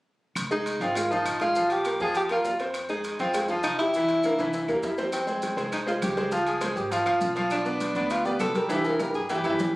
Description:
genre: latin, salsa.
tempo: 201 BPM.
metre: 4/4.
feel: straight.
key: F minor.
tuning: A4 = 440 Hz.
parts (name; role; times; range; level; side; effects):
upright bass; bass; 0.4-9.8 s; F1 to G2; -40 LUFS; equal; none.
claves; percussion; 0.4-9.6 s; none; -41 LUFS; left 2 dB; none.
maracas; percussion; 0.4-9.7 s; none; -42 LUFS; equal; none.
timbales; percussion; 0.4-9.7 s; none; -36 LUFS; right 2 dB; none.
breathy tenor saxophone; melody; 0.5-9.7 s; C4 to Bb4; -27 LUFS; equal; none.
bright grand piano; accompaniment; 0.5-9.7 s; E3 to F5; -27 LUFS; equal; none.
bongos; percussion; 5.1-9.8 s; none; -42 LUFS; left 3 dB; none.
congas; percussion; 5.1-9.7 s; none; -36 LUFS; equal; none.
room: moderate large studio reverb, RT60 0.9 s.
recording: recorded on a phone in the room, studio reverb, compression.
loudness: -24 LUFS.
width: side -19 dB against mid.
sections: 0.4-5.1 A section; 5.1-9.8 B section.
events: drum fill 4.2-5.1, 8.7-9.8.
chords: 0.4 Fm7; 1.6 Bb5; 2.7 Fm7; 3.9 C7; 5.1 Fm; 6.3 Dbmaj7; 7.5 G7/B; 8.7 C7.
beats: | 0.36 0.66 0.96 1.26 | 1.56 1.85 2.15 2.45 | 2.75 3.04 3.34 3.64 | 3.94 4.24 4.53 4.83 | 5.13 5.43 5.73 6.02 | 6.32 6.62 6.92 7.21 | 7.51 7.81 8.11 8.41 | 8.71 9.00 9.30 9.60.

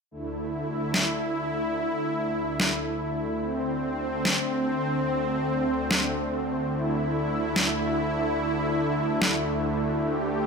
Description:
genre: heavy wobble dubstep.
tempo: 145 BPM.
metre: 4/4.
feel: half-time.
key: unclear.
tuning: A4 = 440 Hz.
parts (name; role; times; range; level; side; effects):
supersaw pad; sustained chords; 0.1-10.5 s; D2 to G4; -25 LUFS; equal; none.
electronic snare drum; drums; 0.9-9.3 s; none; -24 LUFS; equal; overdrive.
room: moderate digital room reverb, RT60 1.1 s.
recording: none.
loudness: -24 LUFS.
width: side -4 dB against mid.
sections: 0.1-10.5 A section.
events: none.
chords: 0.1 Dsus2.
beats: | 0.11 0.53 0.94 1.35 | 1.77 2.18 2.60 3.01 | 3.42 3.84 4.25 4.67 | 5.08 5.49 5.91 6.32 | 6.73 7.15 7.56 7.98 | 8.39 8.80 9.22 9.63 | 10.04 10.46.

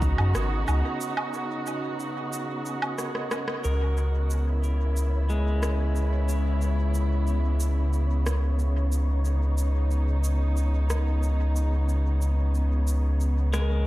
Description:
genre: ambient dub.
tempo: 91 BPM.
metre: 4/4.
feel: straight.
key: C# dorian.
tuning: A4 = 442 Hz.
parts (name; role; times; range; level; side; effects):
muted chamber string section; sustained chords; 0.0-13.9 s; C#3 to F#4; -32 LUFS; right 2 dB; none.
pedal steel guitar; arpeggios; 0.0-7.4, 13.5-13.9 s; G#3 to A#5; -35 LUFS; left 4 dB; low-pass filter, tape echo.
soft dub sub bass; bass; 0.0-13.9 s; G#1 to F#2; -23 LUFS; equal; none.
electronic shaker, woodblock and rim click; drums; 0.0-13.7 s; none; -34 LUFS; right 1 dB; overdrive, dub echo.
wind-like tuned noise texture; texture; 0.0-13.9 s; C#5 to D#5; -40 LUFS; right 1 dB; built-in reverb.
room: light reverb, digital ambience.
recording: none.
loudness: -23 LUFS.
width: side -17 dB against mid.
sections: 0.0-3.6 A section; 3.6-13.9 B section.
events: break 1.0-3.6; drum fill 3.0-3.6; band accent 3.5-3.8; filter sweep on pedal steel guitar 3.6-13.9.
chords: 0.0 Badd9; 3.6 C#m9.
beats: 0.35 | 1.01 1.67 2.33 2.99 | 3.65 4.31 4.97 5.63 | 6.29 6.95 7.61 8.27 | 8.93 9.58 10.24 10.90 | 11.56 12.22 12.88 13.54.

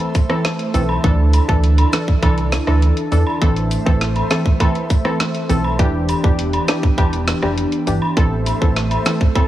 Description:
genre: dancehall.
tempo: 101 BPM.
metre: 4/4.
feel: straight.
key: A minor.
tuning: A4 = 440 Hz.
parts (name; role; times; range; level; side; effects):
airy breathy pad; sustained chords; 0.0-9.5 s; D3 to E5; -25 LUFS; equal; chorus, sidechain pumping.
island pop drum kit; drums; 0.0-9.5 s; hi-hat, kick drum, rim click, snare drum; -18 LUFS; right 1 dB; none.
cabasa and woodblock; percussion; 0.1-9.5 s; none; -27 LUFS; equal; none.
glassy wavetable pluck; accompaniment; 0.3-9.5 s; E3 to A4; -21 LUFS; equal; chorus.
sub bass with octave; bass; 0.7-9.0 s; E1 to E2; -17 LUFS; right 1 dB; none.
room: little or no reverb.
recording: heavily compressed radio sound.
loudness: -14 LUFS.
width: side -13 dB against mid.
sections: 0.0-9.5 A section.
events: none.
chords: 0.0 Am; 1.0 Dsus2; 3.4 Am; 5.8 Em7; 8.2 Am.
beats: 0.45 | 1.04 1.63 2.23 2.82 | 3.42 4.01 4.60 5.20 | 5.79 6.39 6.98 7.57 | 8.17 8.76 9.36.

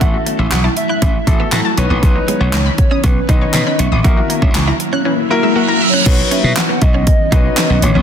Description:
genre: dance-pop.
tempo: 119 BPM.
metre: 4/4.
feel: straight.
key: unclear.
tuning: A4 = 440 Hz.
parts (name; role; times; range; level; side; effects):
hollow clarinet-like synth lead; melody; 0.0-8.0 s; B4 to F#5; -23 LUFS; equal; chorus, tape echo.
clear concert grand piano; accompaniment; 0.0-7.8 s; C#4 to B4; -22 LUFS; left 4 dB; sidechain pumping.
ethereal airy pad; sustained chords; 0.0-8.0 s; D#3 to E4; -20 LUFS; left 1 dB; ensemble chorus, built-in reverb, tremolo, sidechain pumping.
analog pluck; arpeggios; 0.0-6.0 s; C#3 to F#6; -24 LUFS; left 2 dB; chorus, sidechain pumping, tape echo.
direct-recorded clean electric guitar; riff; 0.0-8.0 s; G#3 to F#4; -23 LUFS; right 4 dB; ensemble chorus.
slap bass; bass; 0.0-8.0 s; A1 to B2; -16 LUFS; equal; sidechain pumping.
pop drum kit; drums; 0.0-7.9 s; crash cymbal, handclaps, hi-hat, kick drum, snare drum; -15 LUFS; equal; none.
reverse cymbal; sound effects; 5.3-6.1 s; none; -19 LUFS; right 6 dB; none.
group handclap; percussion; 6.6-7.7 s; none; -25 LUFS; right 6 dB; none.
room: light reverb.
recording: dense, heavily limited modern master.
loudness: -11 LUFS.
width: side -8 dB against mid.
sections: 0.0-6.1 A section; 6.1-8.0 B section.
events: reverse cymbal 5.3-6.1.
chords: 0.0 F#m7; 1.8 Badd9; 4.0 F#7/A#; 6.1 Badd9.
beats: | 0.01 0.52 1.02 1.52 | 2.03 2.53 3.04 3.54 | 4.04 4.55 5.05 5.56 | 6.06 6.57 7.07 7.57.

